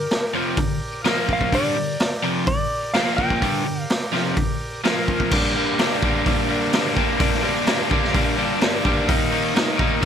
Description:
garage rock duo or trio; 127 BPM; 4/4; straight; G minor; A4 = 440 Hz
clean lap steel guitar; melody; 0.0-4.1 s; Bb4 to G5; -25 LUFS; equal
combo organ; sustained chords; 0.0-10.1 s; F4 to F5; -31 LUFS; right 2 dB
overdriven electric guitar; riff; 0.0-10.1 s; F2 to Eb4; -21 LUFS; left 1 dB
raw garage drum kit; drums; 0.1-10.1 s; crash cymbal, hi-hat, kick drum, snare drum; -23 LUFS; equal
light reverb; -18 LUFS; side -8 dB against mid
0.0-5.3 A section; 5.3-10.1 B section
0.0 Gm; 1.1 Bb5; 1.5 Gm; 2.9 Bb5; 3.4 Gm; 4.8 Bb5; 5.3 Gm; 9.1 Eb
0.11 0.58 1.05 | 1.53 2.00 2.47 2.95 | 3.42 3.89 4.36 4.84 | 5.31 5.78 6.25 6.72 | 7.20 7.67 8.14 8.61 | 9.09 9.56 10.03

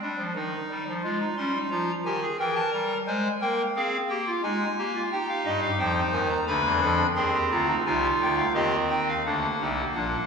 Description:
classical, baroque-style 4-part fugue for pipe organ; 88 BPM; 3/4; straight; F minor; A4 = 440 Hz
pipe organ, clarinet reed; solo; 0.0-10.3 s; Bb1 to C6; -24 LUFS; equal
wet concert hall reverb, RT60 1.8 s; heard from further back in the room, small room ambience; -23 LUFS; side -5 dB against mid
0.0-9.2 A section; 9.2-10.3 B section
0.3 Ebadd9; 1.0 Fm; 2.4 Edim; 3.1 Fm/Ab; 5.1 Cm; 6.5 Bdim/D; 7.2 Cm; 8.6 Cm/Eb; 9.2 D7
0.34 | 1.02 1.70 2.38 | 3.07 3.75 4.43 | 5.12 5.80 6.48 | 7.17 7.86 8.55 | 9.24 9.94

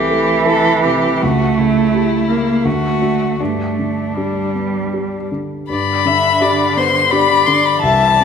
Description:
classical, slow romantic movement for piano quartet; 74-89 BPM; 3/4; rubato; G major; A4 = 440 Hz
rich violin; melody; 0.0-8.2 s; D4 to C6; -17 LUFS; left 6 dB
rich cello; second line; 0.0-8.2 s; D3 to A#3; -18 LUFS; right 5 dB
dark baby grand piano; accompaniment; 0.0-8.2 s; C2 to A4; -19 LUFS; left 1 dB
rich violin; second line; 5.7-8.2 s; C5 to E5; -19 LUFS; left 3 dB
wet recital hall reverb, RT60 1.8 s; minimal, uncompressed stereo recording; -13 LUFS; side -7 dB against mid
0.0-5.7 A section; 5.7-8.2 A section
0.0 Am/C; 1.2 C#dim7; 2.7 D; 3.4 G
0.46 | 1.23 1.94 2.65 | 3.40 4.16 4.93 | 5.70 6.42 7.11 | 7.82

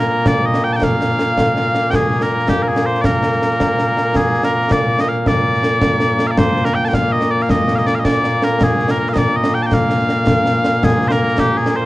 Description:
scottish traditional, Scottish pipe music; 108 BPM (dotted quarters); 6/8; straight; Bb mixolydian; A4 = 440 Hz
mellow small bagpipes; melody; 0.0-11.9 s; Bb2 to A5; -15 LUFS; equal
concert snare drum and concert bass drum; drums; 0.3-11.7 s; -18 LUFS; equal
light reverb; worn, warbling old tape, cassette tape, warbly pitch drift, nothing above 10.5 kHz; -13 LUFS; side -18 dB against mid
0.0-4.2 A section; 4.2-11.9 A section
0.27 | 0.83 1.38 | 1.94 2.49 | 3.05 3.60 | 4.16 4.71 | 5.27 5.83 | 6.38 6.94 | 7.49 8.05 | 8.60 9.16 | 9.71 10.27 | 10.83 11.38

